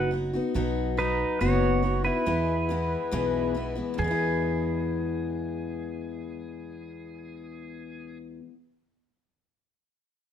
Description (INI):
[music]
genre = honky-tonk and classic country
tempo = 140 BPM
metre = 4/4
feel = straight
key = E major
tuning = A4 = 440 Hz
[part]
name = pedal steel guitar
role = melody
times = 0.0-8.2 s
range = D#4 to F#5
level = -30 LUFS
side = right 2 dB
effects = none
[part]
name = picked steel-string acoustic guitar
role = accompaniment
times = 0.0-8.6 s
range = E2 to F#4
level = -30 LUFS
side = left 4 dB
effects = none
[part]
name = upright bass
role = bass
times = 0.0-8.4 s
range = F#1 to E2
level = -30 LUFS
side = right 1 dB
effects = none
[sound]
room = moderate large studio reverb, RT60 1.0 s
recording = minimal, uncompressed stereo recording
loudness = -25 LUFS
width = side -9 dB against mid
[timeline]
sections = 0.0-4.0 A section; 4.0-7.4 B section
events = none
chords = 0.0 B; 2.3 E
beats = 0.13 | 0.56 0.98 1.41 1.84 | 2.27 2.70 3.13 3.55 | 3.98 4.41 4.84 5.27 | 5.70 6.12 6.55 6.98